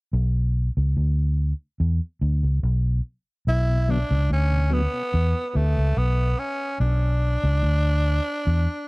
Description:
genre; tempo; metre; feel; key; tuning
reggae; 72 BPM; 4/4; straight; B minor; A4 = 439 Hz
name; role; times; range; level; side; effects
vintage muted fingered electric bass; bass; 0.1-8.7 s; B1 to E2; -20 LUFS; equal; none
raspy tenor saxophone; melody; 3.5-8.9 s; A3 to E4; -27 LUFS; equal; dub echo
mellow tonewheel organ; accompaniment; 3.7-8.8 s; E2 to B3; -30 LUFS; left 2 dB; chorus vibrato, slow rotary speaker, high-pass filter
room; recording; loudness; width
little or no reverb; dry, close 1970s-style studio recording; -20 LUFS; side -26 dB against mid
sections
0.1-3.5 A section; 3.5-8.9 B section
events
none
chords
0.1 Bm; 1.8 E5; 3.5 Bm; 5.1 Em; 6.8 Bm

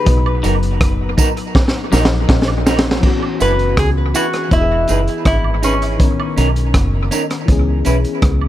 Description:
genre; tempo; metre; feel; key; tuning
lovers rock reggae; 81 BPM; 4/4; straight; B major; A4 = 439 Hz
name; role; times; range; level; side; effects
metal-body resonator slide guitar; melody; 0.0-7.1 s; C#4 to B4; -20 LUFS; equal; tape echo
FM electric piano; accompaniment; 0.0-8.5 s; D#3 to D#5; -23 LUFS; left 5 dB; chorus, dub echo
twangy electric guitar; riff; 0.1-2.5 s; F#3 to B3; -29 LUFS; left 5 dB; none
deep dub fingered electric bass; bass; 0.1-8.5 s; E1 to C#2; -17 LUFS; equal; none
crunchy breakbeat drum kit; drums; 0.1-8.4 s; crash cymbal, hi-hat, kick drum, rim click, snare drum; -16 LUFS; equal; dub echo
woodblock and tambourine; percussion; 0.3-8.5 s; none; -30 LUFS; right 9 dB; dub echo
electric guitar through a small old amp; stabs; 0.4-8.0 s; C#4 to B4; -23 LUFS; right 3 dB; dub echo
room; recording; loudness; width
small room ambience; none; -13 LUFS; side -13 dB against mid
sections
0.0-3.0 A section; 3.0-8.5 B section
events
drum fill 1.6-3.0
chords
0.1 Bmaj7; 3.0 F#7sus4; 4.5 Emaj7; 6.0 Bmaj9; 7.5 C#m7

